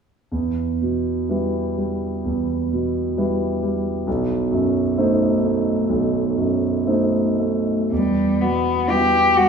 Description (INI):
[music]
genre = classical, romantic duo for cello and grand piano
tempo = 55-68 BPM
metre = 4/4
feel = rubato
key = E minor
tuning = A4 = 443 Hz
[part]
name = warm grand piano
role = accompaniment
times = 0.3-9.5 s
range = B1 to C5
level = -19 LUFS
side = right 1 dB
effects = none
[part]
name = warm cello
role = melody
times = 7.9-9.5 s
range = G3 to G4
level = -16 LUFS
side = left 2 dB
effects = none
[sound]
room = wet scoring stage reverb, RT60 1.9 s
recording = small room reverb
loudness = -18 LUFS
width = side -6 dB against mid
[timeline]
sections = 0.3-7.9 A section; 7.9-9.5 B section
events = none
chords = 0.3 Em; 4.1 B7b9; 7.9 Em